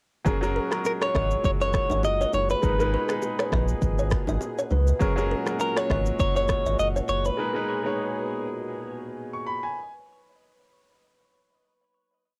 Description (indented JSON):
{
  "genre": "afrobeats",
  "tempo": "101 BPM",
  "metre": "4/4",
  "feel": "swing 55% on 16ths",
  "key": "G# minor",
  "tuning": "A4 = 440 Hz",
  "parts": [
    { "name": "clear concert grand piano", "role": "accompaniment", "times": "0.2-9.9 s", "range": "F#3 to C#6", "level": "-34 LUFS", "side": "equal", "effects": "cassette tape" },
    { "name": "mellow brass ensemble", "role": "sustained chords", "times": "0.3-9.7 s", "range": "A#2 to G#4", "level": "-37 LUFS", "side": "equal", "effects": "sidechain pumping, cassette tape" },
    { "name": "warm sub bass", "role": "bass", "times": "0.3-7.3 s", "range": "F#1 to C#2", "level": "-29 LUFS", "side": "equal", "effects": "none" },
    { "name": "afro-pop drum kit", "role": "drums", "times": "0.3-7.4 s", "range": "finger snaps, kick drum, rim click, shaker", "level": "-30 LUFS", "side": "equal", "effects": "cassette tape" },
    { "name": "congas and bongos", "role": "percussion", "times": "0.3-4.9 s", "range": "none", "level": "-37 LUFS", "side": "equal", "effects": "none" },
    { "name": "kalimba", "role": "riff", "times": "0.4-7.3 s", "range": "F#4 to D#5", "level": "-35 LUFS", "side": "equal", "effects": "cassette tape, tape echo" },
    { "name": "direct-recorded clean electric guitar", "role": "melody", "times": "0.9-9.0 s", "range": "A#4 to D#5", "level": "-30 LUFS", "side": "equal", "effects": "tape echo" }
  ],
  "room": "little or no reverb",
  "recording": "home recording on cassette",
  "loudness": "-25 LUFS",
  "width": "mono",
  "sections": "0.3-9.8 chorus",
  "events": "none",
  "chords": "0.3 F#add9; 2.6 G#madd9; 5.0 F#add9; 7.4 G#madd9",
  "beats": "| 0.26 0.85 1.45 2.04 | 2.63 3.23 3.82 4.42 | 5.01 5.60 6.20 6.79 | 7.38 7.98 8.57 9.17"
}